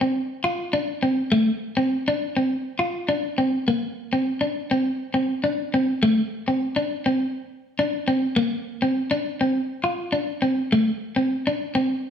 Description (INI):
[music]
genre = highlife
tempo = 102 BPM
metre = 4/4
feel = swing 54% on 16ths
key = unclear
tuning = A4 = 440 Hz
[part]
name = clean electric guitar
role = solo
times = 0.0-11.9 s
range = A3 to F4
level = -21 LUFS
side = equal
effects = none
[sound]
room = wet stone room reverb, RT60 1.2 s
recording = band playing live in one room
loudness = -21 LUFS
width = side -8 dB against mid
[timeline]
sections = 0.0-12.1 A section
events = none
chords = none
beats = 0.15 0.74 | 1.33 1.91 2.50 3.09 | 3.67 4.26 4.85 5.44 | 6.02 6.61 7.20 7.79 | 8.37 8.96 9.55 10.13 | 10.72 11.30 11.89